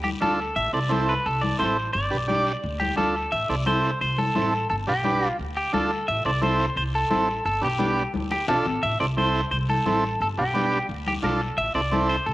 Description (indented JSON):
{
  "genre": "latin, cumbia",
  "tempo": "174 BPM",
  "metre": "4/4",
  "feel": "straight",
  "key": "A minor",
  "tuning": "A4 = 440 Hz",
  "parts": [
    { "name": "clean electric guitar", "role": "melody", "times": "0.0-12.3 s", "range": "G4 to E5", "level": "-25 LUFS", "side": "equal", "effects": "spring reverb, cassette tape" },
    { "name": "upright bass", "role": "bass", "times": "0.0-12.3 s", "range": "G1 to D2", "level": "-29 LUFS", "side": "equal", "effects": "none" },
    { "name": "congas", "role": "percussion", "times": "0.0-12.1 s", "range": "none", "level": "-30 LUFS", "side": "left 4 dB", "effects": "none" },
    { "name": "overdriven combo organ", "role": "accompaniment", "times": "0.2-12.2 s", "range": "B3 to D5", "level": "-26 LUFS", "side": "right 2 dB", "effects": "cassette tape" },
    { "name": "guiro", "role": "percussion", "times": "0.2-12.3 s", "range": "none", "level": "-41 LUFS", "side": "left 4 dB", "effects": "none" }
  ],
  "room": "light reverb, studio reverb",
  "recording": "home recording on cassette",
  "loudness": "-21 LUFS",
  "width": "side -17 dB against mid",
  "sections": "0.0-12.3 A section",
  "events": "drum fill 8.1-8.8",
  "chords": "0.0 Dm; 0.6 Am; 1.9 G; 2.6 Dm; 3.3 Am; 4.7 G; 5.4 Dm; 6.1 Am; 7.5 G; 8.1 Dm; 8.8 Am; 10.2 G; 10.9 Dm; 11.6 Am"
}